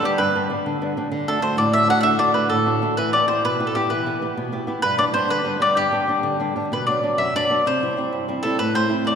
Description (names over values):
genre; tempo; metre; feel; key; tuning
italian folk, Italian serenade; 129 BPM (dotted quarters); 6/8; straight; G major; A4 = 440 Hz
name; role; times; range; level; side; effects
mandolin; melody; 0.0-9.2 s; G4 to F#5; -20 LUFS; equal; none
flamenco guitar; accompaniment; 0.0-9.2 s; E2 to G4; -23 LUFS; equal; none
room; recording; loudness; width
wet church reverb, RT60 3.1 s; recorded in a church or concert hall; -18 LUFS; side -7 dB against mid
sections
0.0-6.7 A section; 6.7-9.2 B section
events
none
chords
0.0 G; 1.1 D; 3.0 Em; 4.8 G; 6.7 Bm; 7.7 C; 8.6 Am